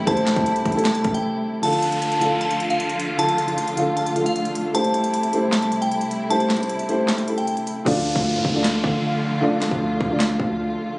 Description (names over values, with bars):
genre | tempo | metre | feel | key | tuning
hip hop, trap | 154 BPM | 4/4 | half-time | D minor | A4 = 441 Hz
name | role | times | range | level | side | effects
glassy synth bell | melody | 0.0-7.8 s | F5 to A5 | -24 LUFS | equal | chorus, phaser, low-pass filter, ping-pong delay
dark baby grand piano | accompaniment | 0.0-11.0 s | D3 to D5 | -22 LUFS | equal | low-pass filter
warm symphonic string section | sustained chords | 0.0-11.0 s | C3 to F4 | -28 LUFS | equal | none
hard-hitting 808-style bass | bass | 0.0-1.2, 7.9-10.8 s | A1 to D3 | -27 LUFS | equal | none
trap drum kit | drums | 0.1-10.5 s | crash cymbal, handclaps, hi-hat, kick drum, snare drum | -26 LUFS | equal | none
downlifter | sound effects | 1.6-4.7, 7.9-11.0 s | none | -30 LUFS | equal | none
room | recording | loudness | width
light reverb | recorded on a phone in the room, studio reverb, compression, nothing above 10.4 kHz | -19 LUFS | side -24 dB against mid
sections
0.0-1.6 A section; 1.6-7.9 B section; 7.9-11.0 C section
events
break 1.2-1.6; hi-hats muted 7.9-11.0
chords
0.0 Am7; 1.6 Dm; 4.7 Am7; 7.9 Dm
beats
| 0.07 0.46 0.85 1.24 | 1.63 2.02 2.41 2.80 | 3.19 3.58 3.97 4.36 | 4.75 5.14 5.53 5.92 | 6.30 6.69 7.08 7.47 | 7.86 8.25 8.64 9.03 | 9.42 9.81 10.20 10.59 | 10.98